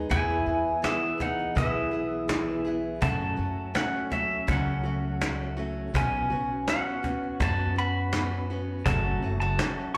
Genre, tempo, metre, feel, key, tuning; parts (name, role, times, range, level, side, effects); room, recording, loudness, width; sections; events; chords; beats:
acoustic folk duo or small band; 82 BPM; 4/4; straight; F# minor; A4 = 440 Hz
picked steel-string acoustic guitar; accompaniment; 0.0-10.0 s; F#2 to G#4; -35 LUFS; equal
mellow tonewheel organ; sustained chords; 0.0-10.0 s; E3 to A4; -41 LUFS; equal; slow rotary speaker, chorus vibrato
upright bass; bass; 0.0-9.6 s; F#1 to F#2; -34 LUFS; equal
pedal steel guitar; melody; 0.1-10.0 s; E5 to B5; -33 LUFS; equal; slapback echo
bowl-back mandolin; second line; 0.1-10.0 s; B3 to F#4; -39 LUFS; equal; slapback echo
vintage brush drum kit; drums; 0.1-9.8 s; kick drum, snare drum; -36 LUFS; equal
cajon; percussion; 0.1-9.8 s; -34 LUFS; equal
little or no reverb; live gig heard through the venue's PA, club reverb; -28 LUFS; mono
0.0-10.0 A section
0.1 E; 3.0 F#m; 5.9 Bsus2; 8.9 F#m
| 0.11 0.84 1.57 2.30 | 3.03 3.76 4.49 5.21 | 5.94 6.67 7.40 8.13 | 8.86 9.59